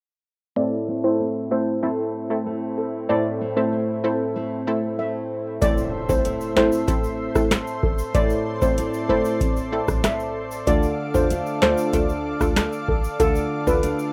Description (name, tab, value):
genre	dancehall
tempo	95 BPM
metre	4/4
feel	straight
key	A minor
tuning	A4 = 440 Hz
part	steel pan	melody	0.6-13.8 s	A4 to E5	-27 LUFS	equal	low-pass filter
part	analog pluck	accompaniment	0.6-14.1 s	A3 to A4	-27 LUFS	equal	chorus, sidechain pumping, low-pass filter
part	lush unison pad	sustained chords	0.6-14.1 s	A3 to D6	-32 LUFS	equal	chorus, low-pass filter
part	nylon-string guitar	arpeggios	0.6-14.1 s	A2 to F4	-32 LUFS	equal	low-pass filter
part	short 808-style bass	bass	5.6-13.9 s	G1 to E2	-32 LUFS	equal	none
part	booming analog drum machine	drums	5.6-14.0 s	hi-hat, kick drum, rim click, snare drum	-25 LUFS	equal	none
part	egg shaker	percussion	5.6-14.1 s	none	-45 LUFS	equal	none
part	impact	sound effects	5.8-8.1 s	none	-38 LUFS	equal	none
room	moderate studio ambience, RT60 0.5 s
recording	rough home demo mix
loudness	-22 LUFS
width	mono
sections	0.6-5.6 A section; 5.6-14.1 B section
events	filter sweep 0.6-5.6; impact 5.6-8.1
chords	0.6 Am; 10.7 Dm